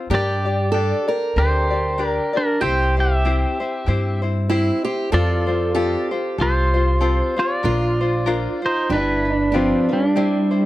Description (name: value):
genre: Hawaiian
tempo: 96 BPM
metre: 4/4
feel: swing 57% on 8ths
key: unclear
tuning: A4 = 440 Hz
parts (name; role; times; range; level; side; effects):
- tenor ukulele; accompaniment; 0.0-10.7 s; C4 to D5; -25 LUFS; left 4 dB; none
- pedal steel guitar; melody; 0.1-10.7 s; F3 to G5; -21 LUFS; equal; none
- picked steel-string acoustic guitar; second line; 0.1-10.7 s; G3 to Bb4; -25 LUFS; right 3 dB; none
- upright bass; bass; 0.1-9.7 s; G1 to G2; -21 LUFS; equal; none
room: small room ambience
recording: dry, close 1970s-style studio recording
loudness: -17 LUFS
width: side -15 dB against mid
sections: 0.0-10.2 A section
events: none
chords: 0.1 Gm; 2.6 C; 5.1 F; 7.6 Bbadd9; 8.9 G7; 10.2 C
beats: | 0.10 0.73 1.35 1.98 | 2.61 3.24 3.86 4.49 | 5.12 5.75 6.38 7.01 | 7.63 8.26 8.89 9.52 | 10.15